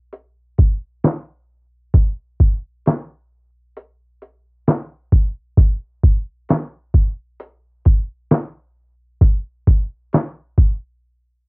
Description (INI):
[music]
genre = hip hop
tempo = 66 BPM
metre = 4/4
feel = swing 57% on 16ths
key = none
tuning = none
[part]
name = lo-fi sampler-style drum kit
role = drums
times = 0.1-10.8 s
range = handclaps, hi-hat, kick drum, snare drum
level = -13 LUFS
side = equal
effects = cassette tape
[sound]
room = light reverb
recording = home recording on cassette, low-pass filter, faint mains hum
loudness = -16 LUFS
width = side -32 dB against mid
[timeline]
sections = 0.0-11.5 A section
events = break 11.0-11.5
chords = none